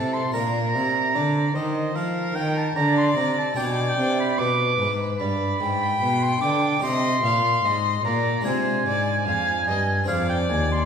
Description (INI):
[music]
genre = classical, baroque-style sonata movement with continuo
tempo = 74 BPM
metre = 4/4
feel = straight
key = unclear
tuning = A4 = 438 Hz
[part]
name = warm violin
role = melody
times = 0.0-10.9 s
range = A4 to G5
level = -28 LUFS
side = left 4 dB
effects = none
[part]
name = clear oboe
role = second line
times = 0.0-10.9 s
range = Eb5 to D6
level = -24 LUFS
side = right 2 dB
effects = none
[part]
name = harpsichord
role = accompaniment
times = 0.0-10.9 s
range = Eb2 to Eb5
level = -28 LUFS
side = left 2 dB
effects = none
[part]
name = warm cello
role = bass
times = 0.0-10.9 s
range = Eb2 to F3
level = -25 LUFS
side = right 1 dB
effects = none
[sound]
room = wet recital hall reverb, RT60 1.5 s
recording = heard from further back in the room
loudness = -20 LUFS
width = side -7 dB against mid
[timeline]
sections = 0.0-10.9 A section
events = none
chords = 0.3 Bb; 3.6 G; 6.8 Cm; 8.5 Dm7b5